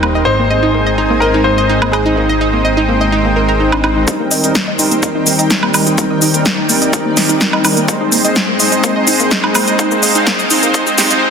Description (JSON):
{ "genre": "progressive house", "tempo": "126 BPM", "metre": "4/4", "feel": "straight", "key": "Eb major", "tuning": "A4 = 442 Hz", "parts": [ { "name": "lush unison pad", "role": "sustained chords", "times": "0.0-11.2 s", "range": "Eb3 to Eb6", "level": "-20 LUFS", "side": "left 1 dB", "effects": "chorus, phaser, sidechain pumping" }, { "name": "analog pluck", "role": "arpeggios", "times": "0.0-11.1 s", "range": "Eb3 to Eb5", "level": "-18 LUFS", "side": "right 1 dB", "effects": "chorus, sidechain pumping, digital delay" }, { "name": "soft supersaw", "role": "stabs", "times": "0.0-11.2 s", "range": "G3 to C5", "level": "-16 LUFS", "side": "right 1 dB", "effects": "sidechain pumping, low-pass filter, digital delay" }, { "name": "fat analog bass", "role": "bass", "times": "0.0-4.1 s", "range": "Eb1 to Ab1", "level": "-18 LUFS", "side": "equal", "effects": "sidechain pumping" }, { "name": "big-room dance drum kit", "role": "drums", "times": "0.0-11.2 s", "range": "hi-hat, shaker, snare drum, woodblock", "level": "-14 LUFS", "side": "equal", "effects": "overdrive" }, { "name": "warm baby grand piano", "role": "melody", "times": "0.3-3.6 s", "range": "Eb4 to C5", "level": "-17 LUFS", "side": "left 2 dB", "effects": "sidechain pumping, tape echo" }, { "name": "electronic kick drum", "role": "drums", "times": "4.1-10.8 s", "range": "none", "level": "-22 LUFS", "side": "left 1 dB", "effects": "high-pass filter on kick, high-pass filter on room" } ], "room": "wet lush hall reverb, RT60 1.9 s, digital ambience", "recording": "dense, heavily limited modern master, high-pass filter", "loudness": "-10 LUFS", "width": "side -6 dB against mid", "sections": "0.0-4.1 A section; 4.1-11.3 B section", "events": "build-up 4.1-11.3; filter sweep on synth pluck 4.1-11.3; filter sweep on supersaw synth 4.1-11.3", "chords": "0.3 Ab; 4.1 Eb6; 7.9 Ab", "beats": "| 0.27 0.74 1.22 1.70 | 2.17 2.65 3.12 3.60 | 4.08 4.55 5.03 5.50 | 5.98 6.46 6.93 7.41 | 7.88 8.36 8.84 9.31 | 9.79 10.27 10.74 11.22" }